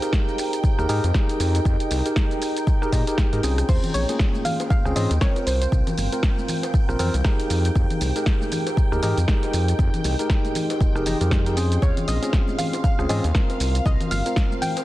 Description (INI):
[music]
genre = deep house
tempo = 118 BPM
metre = 4/4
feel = swing 59% on 16ths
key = F minor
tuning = A4 = 439 Hz
[part]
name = deep dark ambient pad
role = sustained chords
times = 0.0-14.8 s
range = C5 to C6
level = -33 LUFS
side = right 1 dB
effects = chorus, built-in reverb, sidechain pumping
[part]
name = tine electric piano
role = stabs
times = 0.0-14.8 s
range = Bb3 to Eb5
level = -27 LUFS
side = equal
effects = sidechain pumping, tape echo
[part]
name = punchy analog drum machine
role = drums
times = 0.0-14.8 s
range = crash cymbal, hi-hat, rim click, shaker, snare drum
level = -30 LUFS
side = equal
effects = studio reverb
[part]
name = string machine, violins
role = texture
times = 0.0-14.8 s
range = F5 to G5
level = -37 LUFS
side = equal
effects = ensemble chorus
[part]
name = electronic kick drum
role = drums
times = 0.1-14.5 s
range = none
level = -21 LUFS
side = equal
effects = studio reverb
[part]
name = round analog bass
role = bass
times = 0.8-14.2 s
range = F1 to Bb2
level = -23 LUFS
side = equal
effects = sidechain pumping
[part]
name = soft round pluck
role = melody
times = 3.7-7.5, 11.8-14.8 s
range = C5 to G5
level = -29 LUFS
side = right 1 dB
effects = chorus, analog delay
[part]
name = congas and bongos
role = percussion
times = 3.8-14.8 s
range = none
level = -31 LUFS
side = left 2 dB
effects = overdrive, studio reverb
[sound]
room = little or no reverb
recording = dense, heavily limited modern master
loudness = -19 LUFS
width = side -16 dB against mid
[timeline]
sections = 0.0-14.8 A section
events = none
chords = 0.0 Fm11; 3.7 Eb13sus4; 5.5 C7sus4; 7.5 Fm11; 11.8 Eb13sus4; 13.6 C7sus4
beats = 0.13 0.64 1.14 | 1.65 2.16 2.67 3.18 | 3.69 4.20 4.70 5.21 | 5.72 6.23 6.74 7.25 | 7.75 8.26 8.77 9.28 | 9.79 10.30 10.80 11.31 | 11.82 12.33 12.84 13.35 | 13.86 14.37